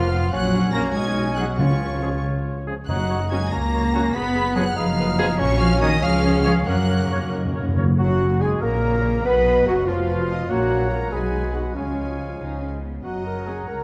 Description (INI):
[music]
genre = classical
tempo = 94 BPM (dotted quarters)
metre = 6/8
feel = straight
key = F# major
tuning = A4 = 440 Hz
[part]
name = rich symphonic violin section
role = melody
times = 0.0-13.8 s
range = B4 to B6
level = -36 LUFS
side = equal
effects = none
[part]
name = clear clarinet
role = second line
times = 0.0-13.8 s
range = E#4 to D#5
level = -36 LUFS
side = equal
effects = none
[part]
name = silver concert flute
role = second line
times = 0.0-13.8 s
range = E#4 to B5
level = -35 LUFS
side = equal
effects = none
[part]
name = warm cor anglais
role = second line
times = 0.0-13.8 s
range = E#4 to F#5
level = -37 LUFS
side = equal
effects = none
[part]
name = warm symphonic violin section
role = second line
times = 0.0-13.8 s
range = C#5 to B5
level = -38 LUFS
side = equal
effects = none
[part]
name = warm bassoon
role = accompaniment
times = 0.0-13.8 s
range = E#3 to E#4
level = -33 LUFS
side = equal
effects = none
[part]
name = warm symphonic viola section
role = accompaniment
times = 0.0-13.6 s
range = E#3 to A#4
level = -33 LUFS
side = equal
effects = none
[part]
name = mellow French horn section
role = sustained chords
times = 0.0-13.8 s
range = E#3 to B4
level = -28 LUFS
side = equal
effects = none
[part]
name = mellow trombone section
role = sustained chords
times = 0.0-13.8 s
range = A#2 to B3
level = -37 LUFS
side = equal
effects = none
[part]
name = mellow trumpet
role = stabs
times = 0.0-13.8 s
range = C#4 to C#5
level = -35 LUFS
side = equal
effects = none
[part]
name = clear symphonic cello section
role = bass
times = 0.0-13.8 s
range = C#2 to B3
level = -28 LUFS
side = equal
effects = none
[part]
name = rich symphonic double bass section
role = bass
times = 0.0-13.8 s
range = E#1 to F#2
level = -28 LUFS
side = equal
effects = none
[part]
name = timpani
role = percussion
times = 1.6-3.5, 6.7-8.6 s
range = F#2 to C#3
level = -27 LUFS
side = equal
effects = none
[sound]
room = moderate concert hall reverb, RT60 2.4 s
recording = dark, warm production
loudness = -21 LUFS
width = mono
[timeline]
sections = 0.0-8.0 A section; 8.0-13.8 A section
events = timpani fill 6.7-8.0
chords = 0.3 F#/A#; 0.9 G#m7/B; 1.6 C#; 2.9 F#; 4.2 Fdim/F#; 5.4 F#/A#; 6.0 C#; 6.7 F#; 9.3 C#9 (rootless); 10.5 F#/A#; 11.1 G#m7/B; 11.8 C#; 13.0 F#